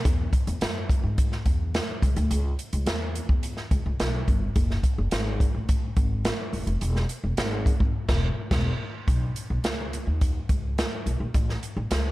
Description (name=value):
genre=uptempo 1960s-style soul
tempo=106 BPM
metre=4/4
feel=straight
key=B mixolydian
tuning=A4 = 440 Hz
part: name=upright bass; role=bass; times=0.0-12.1 s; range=E1 to G#2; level=-27 LUFS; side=equal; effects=none
part: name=swinging big-band drum kit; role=drums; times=0.1-12.0 s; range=crash cymbal, hi-hat, kick drum, snare drum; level=-25 LUFS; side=equal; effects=none
room=little or no reverb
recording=none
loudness=-23 LUFS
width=side -18 dB against mid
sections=0.0-9.1 A section; 9.1-12.1 B section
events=band accent 7.9-9.1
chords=none